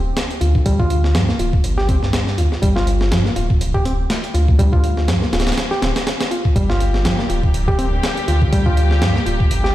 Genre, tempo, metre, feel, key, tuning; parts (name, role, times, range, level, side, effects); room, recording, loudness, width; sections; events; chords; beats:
breakbeat, breaks; 122 BPM; 4/4; swing 56% on 16ths; G minor; A4 = 440 Hz
dark detuned saw bass; bass; 0.0-9.7 s; D1 to G2; -18 LUFS; equal
breakbeat sampler-style drum kit; drums; 0.2-9.7 s; hi-hat, kick drum, snare drum; -19 LUFS; equal
overdriven reed electric piano; riff; 0.4-9.7 s; F3 to G4; -22 LUFS; equal; tube saturation, digital delay
warm chamber string section; sustained chords; 6.6-9.7 s; D3 to G4; -24 LUFS; left 1 dB; vintage 12-bit sampler grit, sidechain pumping
light reverb, digital ambience; played on a big sound system in a bare room, stone room reverb; -15 LUFS; side -14 dB against mid
0.0-9.7 A section
0.0 Gm
0.17 | 0.66 1.15 1.64 2.13 | 2.62 3.12 3.61 4.10 | 4.59 5.08 5.58 6.07 | 6.56 7.05 7.54 8.04 | 8.53 9.02 9.51